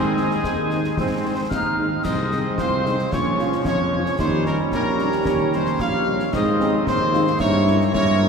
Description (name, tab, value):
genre	military-style march for wind band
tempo	112 BPM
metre	2/4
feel	straight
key	Ab major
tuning	A4 = 440 Hz
part	clear trumpet section	melody	0.0-8.3 s	Ab4 to F5	-27 LUFS	equal	none
part	hollow piccolo	second line	0.0-8.3 s	Ab5 to F6	-28 LUFS	left 3 dB	none
part	warm woodwind section	second line	0.0-8.3 s	E4 to Db5	-30 LUFS	left 1 dB	none
part	clear trombone section	sustained chords	0.0-8.3 s	Eb3 to Eb4	-27 LUFS	right 2 dB	none
part	dark tuba	bass	0.0-8.3 s	Bb1 to Ab2	-23 LUFS	right 1 dB	none
part	dark French horn section	accompaniment	0.2-8.3 s	F3 to F4	-31 LUFS	left 3 dB	none
part	concert snare drum, concert bass drum and clash cymbals	drums	0.2-8.1 s	none	-29 LUFS	left 1 dB	none
part	clear euphonium	second line	2.6-8.3 s	C4 to G4	-26 LUFS	right 4 dB	none
room	wet cathedral reverb, RT60 6.6 s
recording	recorded in a church or concert hall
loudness	-18 LUFS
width	side -6 dB against mid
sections	0.0-2.1 A section; 2.1-8.3 B section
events	none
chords	0.0 Ab; 2.1 Ab/C; 3.1 Bbm; 4.2 Eb7; 6.3 Ab; 7.4 Gdim7